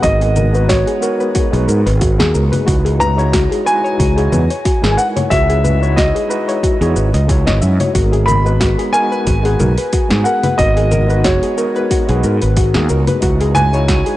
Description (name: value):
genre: sunset chillout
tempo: 91 BPM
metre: 4/4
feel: swing 55% on 16ths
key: G# minor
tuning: A4 = 440 Hz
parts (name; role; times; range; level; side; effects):
- dark concert grand piano; melody; 0.0-14.2 s; C#5 to B5; -19 LUFS; equal; tape echo, shimmer reverb
- overdriven tine electric piano; accompaniment; 0.0-14.2 s; G#3 to C#5; -21 LUFS; equal; fast tremolo, auto-pan, tape echo, shimmer reverb
- soft round pluck; arpeggios; 0.0-14.1 s; F#4 to E5; -20 LUFS; left 3 dB; chorus, tape echo, shimmer reverb
- fretless electric bass; bass; 0.0-14.0 s; G#1 to G#2; -14 LUFS; equal; tube saturation
- deep house drum kit; drums; 0.0-14.2 s; congas, hi-hat, shaker, snare drum; -21 LUFS; left 1 dB; overdrive
- electronic kick drum; drums; 0.0-14.0 s; none; -18 LUFS; equal; overdrive
room: light reverb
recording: dry, gritty hardware recording, cassette tape, nothing above 10.8 kHz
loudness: -12 LUFS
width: side -15 dB against mid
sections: 0.0-14.2 A section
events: none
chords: 0.0 G#m9; 2.7 C#m11; 7.9 G#m9; 13.2 C#m11